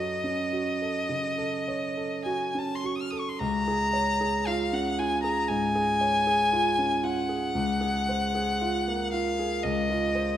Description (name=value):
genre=classical, impressionist duo for violin and grand piano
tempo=51-59 BPM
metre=4/4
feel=rubato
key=Db major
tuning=A4 = 440 Hz
part: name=clear violin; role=melody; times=0.0-10.4 s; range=Eb5 to F6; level=-27 LUFS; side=left 2 dB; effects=none
part: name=warm concert grand piano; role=accompaniment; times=0.0-10.4 s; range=Db2 to Db5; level=-28 LUFS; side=right 2 dB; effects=none
room=moderate scoring stage reverb, RT60 1.8 s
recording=minimal, uncompressed stereo recording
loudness=-25 LUFS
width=side -10 dB against mid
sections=0.0-3.4 A section; 3.4-10.4 B section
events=none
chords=0.0 Gbm6; 3.4 Db6; 7.5 Ab13/Db